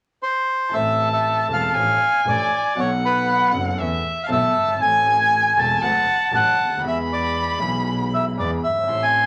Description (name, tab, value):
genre	tango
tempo	117 BPM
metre	4/4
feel	rubato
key	A harmonic minor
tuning	A4 = 440 Hz
part	bandoneon	melody	0.2-9.3 s	B4 to A5	-22 LUFS	equal	none
part	warm violin	second line	0.7-9.3 s	E5 to C6	-25 LUFS	equal	none
part	clear concert grand piano	accompaniment	0.7-9.3 s	E1 to A4	-30 LUFS	equal	none
part	rich double bass	bass	0.7-9.3 s	E1 to E2	-32 LUFS	equal	none
room	wet club ambience, RT60 0.5 s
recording	vinyl crackle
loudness	-20 LUFS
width	mono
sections	0.7-9.3 A section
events	none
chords	0.0 N.C.; 0.7 Am; 1.7 Dm/A; 2.8 B7; 3.8 Esus4; 4.8 Am; 5.8 D; 6.8 E